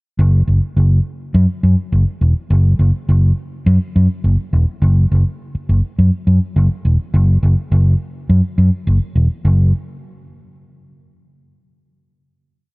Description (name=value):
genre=funk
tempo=104 BPM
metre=4/4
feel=straight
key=unclear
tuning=A4 = 438 Hz
part: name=fingered electric bass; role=solo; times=0.2-9.7 s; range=E1 to F#2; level=-12 LUFS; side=equal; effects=none
room=little or no reverb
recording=dry, close 1970s-style studio recording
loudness=-13 LUFS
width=side -29 dB against mid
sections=0.2-9.4 groove; 9.4-11.7 final note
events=none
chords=none